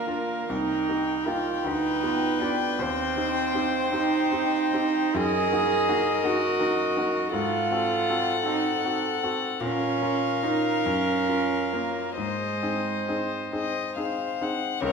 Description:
classical, slow romantic movement for piano quartet; 44-56 BPM (dotted quarters); 6/8; rubato; A4 = 440 Hz
warm violin; melody; 0.0-14.9 s; Db5 to G5; -29 LUFS; left 12 dB
warm cello; second line; 0.0-14.9 s; F3 to Ab4; -27 LUFS; right 5 dB
clear grand piano; accompaniment; 0.0-14.9 s; C2 to Bb4; -30 LUFS; left 2 dB
warm viola; accompaniment; 0.0-14.9 s; A4 to C5; -31 LUFS; right 3 dB
wet recital hall reverb, RT60 1.3 s; minimal, uncompressed stereo recording; -23 LUFS; side -5 dB against mid
0.0-14.8 A section
0.0 Bb/D; 0.5 Cm7; 1.6 G7/D; 2.8 Cm/Eb; 5.2 Ebm/Gb; 7.3 Ab7b9; 9.6 Bbm; 10.9 Gbmaj7; 12.2 Ab
| 0.50 1.65 | 2.80 3.93 | 5.16 6.25 | 7.34 8.47 | 9.62 10.86 | 12.18 13.52 | 14.82

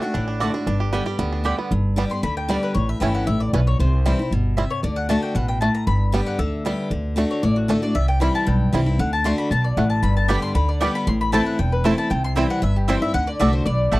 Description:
bluegrass; 231 BPM; 4/4; straight; G major; A4 = 440 Hz
bluegrass banjo; melody; 0.0-14.0 s; D3 to G4; -26 LUFS; right 4 dB
mandolin; melody; 0.0-13.9 s; F#4 to C6; -26 LUFS; left 2 dB
picked steel-string acoustic guitar; accompaniment; 0.0-14.0 s; E2 to G4; -23 LUFS; left 1 dB
upright bass; bass; 0.1-14.0 s; E1 to D2; -21 LUFS; equal
mandolin; stabs; 0.4-1.5, 10.3-14.0 s; A3 to A5; -24 LUFS; right 4 dB
little or no reverb; dry, close 1970s-style studio recording; -18 LUFS; side -19 dB against mid
0.0-1.7 A section; 1.7-14.0 B section
mandolin solo 1.7-14.0
0.0 D; 0.7 G; 2.8 A; 3.8 C; 4.8 D; 5.9 G; 6.9 D; 8.0 C; 9.0 D; 10.0 G; 11.1 Am; 12.1 C; 13.1 D
0.15 0.41 | 0.67 0.93 1.19 1.45 | 1.71 1.97 2.23 2.49 | 2.75 3.01 3.27 3.53 | 3.79 4.05 4.31 4.57 | 4.83 5.09 5.35 5.61 | 5.87 6.13 6.39 6.65 | 6.91 7.17 7.43 7.69 | 7.95 8.21 8.47 8.73 | 8.99 9.25 9.51 9.77 | 10.03 10.29 10.55 10.81 | 11.07 11.33 11.59 11.85 | 12.11 12.37 12.63 12.89 | 13.15 13.41 13.67 13.93

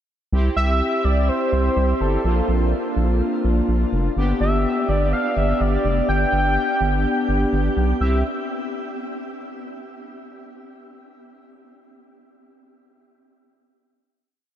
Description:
synth-pop; 125 BPM; 4/4; straight; C major; A4 = 440 Hz
analog synth brass; accompaniment; 0.3-8.2 s; Bb3 to G4; -24 LUFS; left 1 dB; chorus, shimmer reverb
round analog bass; bass; 0.3-8.2 s; F1 to C2; -20 LUFS; equal
octave-doubled lead; melody; 0.6-8.2 s; A4 to G5; -24 LUFS; equal; chorus, shimmer reverb, tape echo
wet huge ambient reverb, RT60 7.9 s; dreamy mix soaked in reverb; -18 LUFS; side -10 dB against mid
0.3-8.0 verse; 8.0-9.9 final chord
0.3 C; 2.2 Bbmaj7; 4.2 G; 8.0 C
| 0.33 0.81 1.29 1.77 | 2.25 2.73 3.21 3.69 | 4.17 4.65 5.13 5.61 | 6.09 6.57 7.05 7.53 | 8.01

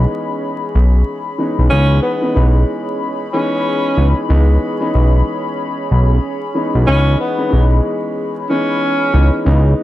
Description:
hip hop; 93 BPM; 4/4; swing 59% on 16ths; C# minor; A4 = 440 Hz
dark grand piano; accompaniment; 0.0-9.8 s; E3 to D#4; -20 LUFS; left 1 dB; cassette tape, high-pass filter, low-pass filter, plate reverb
hollow soft pad; sustained chords; 0.0-9.8 s; C#4 to B5; -24 LUFS; left 1 dB; chorus, high-pass filter, low-pass filter, plate reverb
fat analog bass; bass; 0.0-9.7 s; B1 to C#2; -11 LUFS; equal
breathy tenor saxophone; melody; 1.7-9.4 s; B3 to C#4; -17 LUFS; equal; high-pass filter, low-pass filter, slapback echo, plate reverb
light reverb; vinyl crackle; -13 LUFS; side -15 dB against mid
0.0-9.8 A section
0.0 C#m7
0.42 1.07 | 1.71 2.36 3.00 3.65 | 4.29 4.94 5.58 6.23 | 6.88 7.52 8.17 8.81 | 9.46

